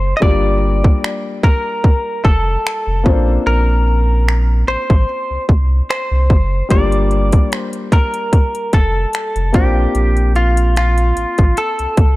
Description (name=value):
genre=contemporary R&B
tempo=74 BPM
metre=4/4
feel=swing 54% on 16ths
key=G minor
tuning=A4 = 440 Hz
part: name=direct-recorded clean electric guitar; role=melody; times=0.0-12.2 s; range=F4 to Eb5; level=-20 LUFS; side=equal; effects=none
part: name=warm grand piano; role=accompaniment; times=0.0-12.2 s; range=G3 to C5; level=-22 LUFS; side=left 3 dB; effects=none
part: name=warm sub bass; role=bass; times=0.0-12.2 s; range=F1 to C2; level=-15 LUFS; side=equal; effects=none
part: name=trap drum kit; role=drums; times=0.2-12.2 s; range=finger snaps, hi-hat, kick drum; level=-13 LUFS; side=equal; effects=none
room=little or no reverb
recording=dark, warm production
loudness=-12 LUFS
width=side -19 dB against mid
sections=0.0-12.2 A section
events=break 0.0-6.7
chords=0.2 Gm9; 3.1 Bbadd9; 6.7 Gm9; 9.5 Bbmaj9